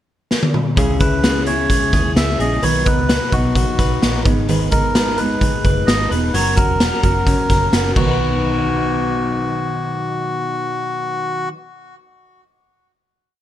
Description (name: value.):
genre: jangly indie pop.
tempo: 130 BPM.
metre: 4/4.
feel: straight.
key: B major.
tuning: A4 = 440 Hz.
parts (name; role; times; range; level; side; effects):
raw garage drum kit; drums; 0.3-8.1 s; crash cymbal, hi-hat, kick drum, snare drum, toms; -18 LUFS; equal; none.
fingerpicked steel-string acoustic guitar; accompaniment; 0.8-11.6 s; G#2 to B4; -24 LUFS; right 5 dB; none.
twelve-string electric guitar; arpeggios; 0.8-11.7 s; G#2 to B4; -23 LUFS; left 6 dB; spring reverb.
vintage muted fingered electric bass; bass; 0.8-11.5 s; E1 to D#2; -22 LUFS; equal; none.
melodica; melody; 1.0-11.5 s; F#4 to E5; -21 LUFS; equal; none.
room: light reverb.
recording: dark, warm production.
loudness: -15 LUFS.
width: side -12 dB against mid.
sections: 0.0-0.8 pickup bar; 0.8-8.2 verse; 8.2-11.9 final hit.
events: drum fill 0.3-0.8.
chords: 0.0 N.C.; 0.8 C#m; 2.6 B; 4.3 G#m; 6.3 F#; 8.0 B.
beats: 0.31 | 0.77 1.24 1.70 2.16 | 2.63 3.09 3.56 4.02 | 4.49 4.95 5.41 5.88 | 6.34 6.80 7.27 7.73 | 8.19 8.65 9.12 9.58 | 10.04 10.50 10.96 11.43.